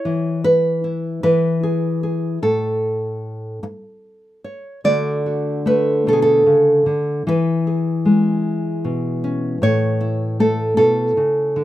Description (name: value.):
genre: folk, solo fingerstyle acoustic guitar.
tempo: 51 BPM (dotted quarters).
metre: 6/8.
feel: rubato.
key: A major.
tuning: A4 = 440 Hz.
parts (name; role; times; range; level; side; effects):
nylon-string guitar; solo; 0.0-11.6 s; A2 to D5; -16 LUFS; equal; none.
room: light reverb.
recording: rough home demo mix.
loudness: -16 LUFS.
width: side -14 dB against mid.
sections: 0.0-4.8 A section; 4.8-11.6 B section.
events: none.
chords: 0.1 N.C.; 1.2 E; 2.4 A; 4.8 D; 7.3 E6; 9.6 A.